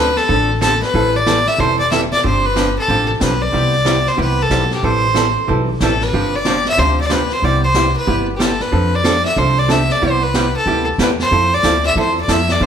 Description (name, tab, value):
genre	country, western swing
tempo	185 BPM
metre	4/4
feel	swing 64% on 8ths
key	C major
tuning	A4 = 440 Hz
part	clear fiddle	melody	0.0-12.7 s	G4 to E5	-16 LUFS	equal	none
part	archtop guitar, miked and amplified	accompaniment	0.0-12.7 s	C3 to A4	-19 LUFS	right 2 dB	none
part	upright bass	bass	0.0-12.7 s	E1 to G2	-19 LUFS	equal	none
part	vintage brush drum kit	drums	0.2-12.7 s	brushed snare drum, hi-hat, snare drum	-23 LUFS	left 2 dB	none
room	moderate large studio reverb, RT60 1.2 s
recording	band playing live in one room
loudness	-13 LUFS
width	side -8 dB against mid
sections	0.0-12.7 A section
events	none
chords	0.0 Dm7; 0.9 Am7; 2.2 G7sus4; 3.5 Cmaj7; 4.8 Am9; 6.1 G7sus4; 7.4 Cmaj7; 8.7 F6; 10.0 Cmaj7; 11.3 Fmaj7